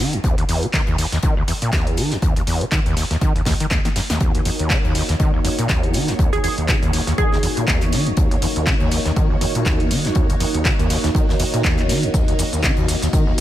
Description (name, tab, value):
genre	acid house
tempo	121 BPM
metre	4/4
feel	swing 57% on 16ths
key	Eb phrygian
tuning	A4 = 440 Hz
part	overdriven acid bass	riff	0.0-13.4 s	Eb2 to Eb3	-21 LUFS	equal	distortion, analog chorus, sidechain pumping, digital delay
part	tight metal drum kit	drums	0.0-13.3 s	hi-hat, snare drum	-32 LUFS	left 3 dB	high-pass filter on hats, high-pass filter on snare, high-pass filter on room
part	punchy analog drum machine	drums	0.1-13.4 s	cabasa, handclaps, hi-hat, snare drum	-25 LUFS	equal	none
part	electronic kick drum	drums	0.2-13.2 s	none	-20 LUFS	equal	none
part	string machine, full ensemble	sustained chords	4.2-13.4 s	Bb3 to Eb5	-24 LUFS	right 1 dB	phaser, ensemble chorus, sidechain pumping
part	glassy wavetable pluck	melody	6.3-7.9 s	Ab4	-26 LUFS	right 2 dB	chorus, digital delay
room	little or no reverb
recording	none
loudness	-16 LUFS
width	side -13 dB against mid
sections	0.0-13.4 A section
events	filter sweep on acid bass 0.0-13.4; drum fill 3.5-4.2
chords	0.0 Ebm7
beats	| 0.24 0.73 1.23 1.73 | 2.22 2.72 3.21 3.71 | 4.21 4.70 5.20 5.69 | 6.19 6.68 7.18 7.68 | 8.17 8.67 9.16 9.66 | 10.16 10.65 11.15 11.64 | 12.14 12.64 13.13